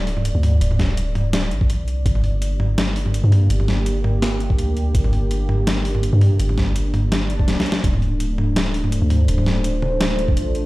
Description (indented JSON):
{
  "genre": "half-time drum and bass",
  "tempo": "166 BPM",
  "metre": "4/4",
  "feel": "swing 53% on 16ths, half-time",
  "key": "unclear",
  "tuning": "A4 = 440 Hz",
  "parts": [
    { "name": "dark analog pad", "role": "sustained chords", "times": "0.0-10.7 s", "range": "A3 to D5", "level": "-26 LUFS", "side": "equal", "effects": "chorus, sidechain pumping" },
    { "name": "long sustained 808-style bass", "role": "bass", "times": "0.0-10.7 s", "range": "D1 to G2", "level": "-19 LUFS", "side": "equal", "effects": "none" },
    { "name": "boom bap sampler-style drum kit", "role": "drums", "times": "0.1-10.6 s", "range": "hi-hat, snare drum, toms", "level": "-22 LUFS", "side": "equal", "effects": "none" },
    { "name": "electronic kick drum", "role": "drums", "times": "0.8-2.1, 4.5-7.9, 10.3-10.4 s", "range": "none", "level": "-20 LUFS", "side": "equal", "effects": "none" },
    { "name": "swell", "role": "sound effects", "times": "7.3-7.8 s", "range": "none", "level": "-34 LUFS", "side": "right 2 dB", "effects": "none" }
  ],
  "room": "little or no reverb",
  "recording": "played on a big sound system in a bare room, stone room reverb",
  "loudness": "-17 LUFS",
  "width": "side -19 dB against mid",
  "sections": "0.0-10.7 A section",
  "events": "swell 7.3-7.8; drum fill 7.5-7.8",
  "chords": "0.0 Dm7; 2.1 Gm; 7.8 Dm7",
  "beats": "0.25 | 0.61 0.97 1.33 1.70 | 2.06 2.42 2.78 3.14 | 3.50 3.86 4.22 4.59 | 4.95 5.31 5.67 6.03 | 6.39 6.75 7.12 7.48 | 7.84 8.20 8.56 8.92 | 9.29 9.65 10.01 10.37"
}